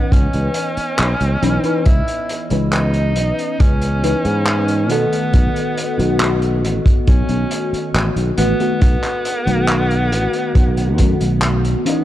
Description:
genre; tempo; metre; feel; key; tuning
vaporwave; 69 BPM; 4/4; straight; unclear; A4 = 438 Hz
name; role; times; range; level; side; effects
bright tenor saxophone; melody; 0.0-12.0 s; B3 to E4; -24 LUFS; equal; vintage 12-bit sampler grit, tape echo
FM electric piano with soft pad layer; accompaniment; 0.0-12.0 s; D#3 to D#5; -21 LUFS; left 1 dB; phaser, analog chorus, tape echo
warbly tape-like pad; sustained chords; 0.0-12.0 s; E3 to D#5; -28 LUFS; left 1 dB; chorus, built-in reverb
sustaining fretless electric bass; bass; 0.1-11.7 s; A1 to B2; -18 LUFS; equal; none
crunchy breakbeat drum kit; drums; 0.1-12.0 s; handclaps, hi-hat; -24 LUFS; equal; none
kick drum; drums; 0.1-11.2 s; none; -13 LUFS; equal; none
room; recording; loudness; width
light reverb, studio ambience; dark, warm production; -14 LUFS; side -13 dB against mid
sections
0.0-12.0 A section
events
none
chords
0.0 C#m9; 4.9 B7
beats
0.12 0.99 | 1.86 2.73 3.60 4.47 | 5.34 6.21 7.08 7.95 | 8.82 9.69 10.56 11.43

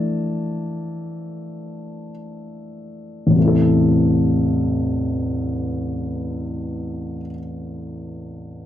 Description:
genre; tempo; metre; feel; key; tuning
pop; free time; none; none; A minor; A4 = 440 Hz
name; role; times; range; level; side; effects
warm concert grand piano; accompaniment; 0.0-8.7 s; A1 to A5; -20 LUFS; left 1 dB; none
room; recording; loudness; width
light reverb; dry, close 1970s-style studio recording; -18 LUFS; side -11 dB against mid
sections
0.0-3.4 A section; 3.4-8.3 B section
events
slowing down 0.0-3.4; grand piano solo 0.0-3.4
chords
0.0 E7sus4; 3.4 Am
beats
free time

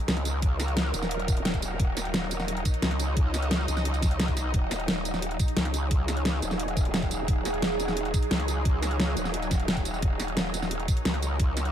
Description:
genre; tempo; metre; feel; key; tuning
dark technical drum and bass; 175 BPM; 4/4; straight; Eb minor; A4 = 440 Hz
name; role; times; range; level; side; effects
swarming drone; sustained chords; 0.0-11.7 s; Gb3 to Eb5; -32 LUFS; right 1 dB; built-in reverb, sidechain pumping
dubstep drum kit; drums; 0.0-11.7 s; hi-hat, snare drum, tambourine; -30 LUFS; equal; none
growl bass; bass; 0.1-11.7 s; Eb1 to Db2; -29 LUFS; equal; chorus
electronic kick drum; drums; 0.4-11.5 s; none; -25 LUFS; equal; none
room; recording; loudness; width
light reverb, digital ambience; none; -24 LUFS; side -10 dB against mid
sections
0.0-11.7 A section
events
none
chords
0.0 Ebm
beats
0.08 | 0.42 0.77 1.11 1.45 | 1.79 2.14 2.48 2.82 | 3.17 3.51 3.85 4.20 | 4.54 4.88 5.22 5.57 | 5.91 6.25 6.59 6.94 | 7.28 7.62 7.97 8.31 | 8.65 8.99 9.34 9.68 | 10.02 10.37 10.71 11.05 | 11.39

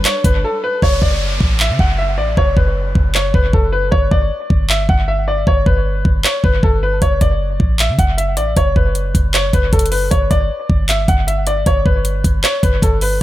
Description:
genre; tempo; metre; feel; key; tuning
hip hop, trap; 155 BPM; 4/4; half-time; F# phrygian; A4 = 445 Hz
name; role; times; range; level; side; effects
rich symphonic string section; sustained chords; 0.0-0.8 s; G3 to B4; -29 LUFS; equal; none
clean 808-style bass; bass; 0.0-13.2 s; F#1 to C#3; -17 LUFS; equal; none
trap drum kit; drums; 0.0-13.1 s; handclaps, hi-hat, kick drum; -15 LUFS; equal; none
bright grand piano; melody; 0.1-13.2 s; A4 to F#5; -19 LUFS; left 1 dB; low-pass filter, analog delay
downlifter; sound effects; 0.8-3.9 s; none; -26 LUFS; equal; none
room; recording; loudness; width
little or no reverb; echo-heavy mix; -13 LUFS; side -14 dB against mid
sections
0.8-13.2 A section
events
break 0.4-0.8; hi-hats muted 0.8-7.0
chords
0.0 Gadd9; 0.8 F#m; 3.9 G; 7.0 F#m; 10.1 G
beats
0.05 0.44 | 0.82 1.21 1.60 1.99 | 2.37 2.76 3.15 3.53 | 3.92 4.31 4.70 5.08 | 5.47 5.86 6.24 6.63 | 7.02 7.41 7.79 8.18 | 8.57 8.95 9.34 9.73 | 10.12 10.50 10.89 11.28 | 11.66 12.05 12.44 12.82

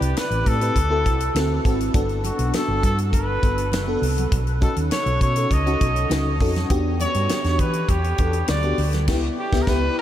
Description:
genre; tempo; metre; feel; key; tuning
polished 1980s jazz-funk pop; 101 BPM; 4/4; straight; B minor; A4 = 440 Hz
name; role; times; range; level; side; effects
warm trumpet; melody; 0.0-10.0 s; F#4 to D#5; -25 LUFS; equal; diffuse ambient delay
FM electric piano with soft pad layer; accompaniment; 0.0-10.0 s; B3 to B4; -25 LUFS; left 1 dB; tremolo, analog chorus
hollow-body short-scale fingered electric bass; bass; 0.0-9.9 s; F#1 to E3; -23 LUFS; equal; none
tight funk drum kit; drums; 0.0-9.8 s; crash cymbal, hi-hat, kick drum, snare drum; -24 LUFS; equal; none
congas; percussion; 1.9-9.1 s; none; -37 LUFS; right 6 dB; none
room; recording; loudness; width
moderate huge ambient reverb, RT60 9.1 s; dreamy mix soaked in reverb; -18 LUFS; side -12 dB against mid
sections
0.0-10.0 A section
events
band accent 9.1-10.0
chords
0.0 Am7; 0.8 D7; 1.9 Gmaj7; 4.3 B7; 6.7 Em9; 9.1 C#m7b5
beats
0.16 0.75 1.35 | 1.94 2.54 3.13 3.73 | 4.32 4.92 5.51 6.11 | 6.70 7.29 7.89 8.48 | 9.08 9.67

